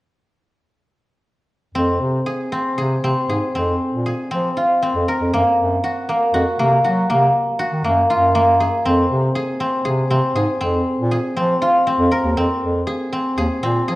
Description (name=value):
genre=contemporary instrumental, chamber music in an uneven meter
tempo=119 BPM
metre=7/4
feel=straight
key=F phrygian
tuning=A4 = 440 Hz
part: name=clear bass clarinet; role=bass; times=1.7-14.0 s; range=Eb2 to Gb3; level=-20 LUFS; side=equal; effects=none
part: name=guzheng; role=arpeggios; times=1.8-14.0 s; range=Bb3 to Bb4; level=-18 LUFS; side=equal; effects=none
room=wet recital hall reverb, RT60 1.4 s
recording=worn, warbling old tape, cassette tape, warbly pitch drift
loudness=-16 LUFS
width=side -18 dB against mid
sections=1.8-14.0 A section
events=none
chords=1.8 Fm; 5.3 Gbmaj7; 8.9 Fm